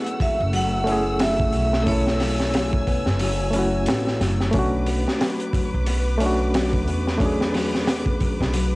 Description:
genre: trip hop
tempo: 90 BPM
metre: 4/4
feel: swing 59% on 16ths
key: F# minor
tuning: A4 = 443 Hz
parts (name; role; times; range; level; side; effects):
- barky reed electric piano; accompaniment; 0.0-8.8 s; A3 to A4; -25 LUFS; equal; overdrive, fast tremolo, harmonic tremolo, cassette tape, tape echo
- rich chamber string section; sustained chords; 0.0-8.8 s; A3 to E6; -31 LUFS; equal; cassette tape
- nylon-string guitar; arpeggios; 0.0-8.8 s; F#3 to B3; -31 LUFS; left 4 dB; cassette tape, dub echo
- crunchy breakbeat drum kit; drums; 0.1-8.7 s; hi-hat, kick drum, snare drum; -24 LUFS; equal; cassette tape
- vibraphone with hard mallets; melody; 0.2-4.2 s; C#5 to F#5; -27 LUFS; equal; dub echo
- upright bass; bass; 0.4-8.8 s; F#1 to E2; -25 LUFS; equal; none
room: light reverb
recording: home recording on cassette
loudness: -19 LUFS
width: side -22 dB against mid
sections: 0.0-8.8 A section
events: none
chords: 0.0 F#m7; 4.5 Bm7

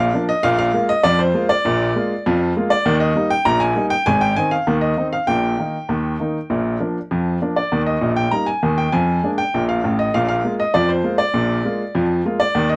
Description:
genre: ragtime piano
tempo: 99 BPM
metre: 2/4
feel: straight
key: unclear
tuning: A4 = 440 Hz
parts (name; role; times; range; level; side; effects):
- clear baby grand piano; solo; 0.0-12.8 s; Ab1 to Bb5; -19 LUFS; equal; none
room: little or no reverb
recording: dry, close 1970s-style studio recording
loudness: -19 LUFS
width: mono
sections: 0.0-12.8 A section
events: none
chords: 0.4 Bb7; 2.9 Eb; 4.1 Ab; 5.3 Eb/Bb; 6.5 Bb; 7.7 Eb; 8.9 Bb7/F; 10.1 Bb7

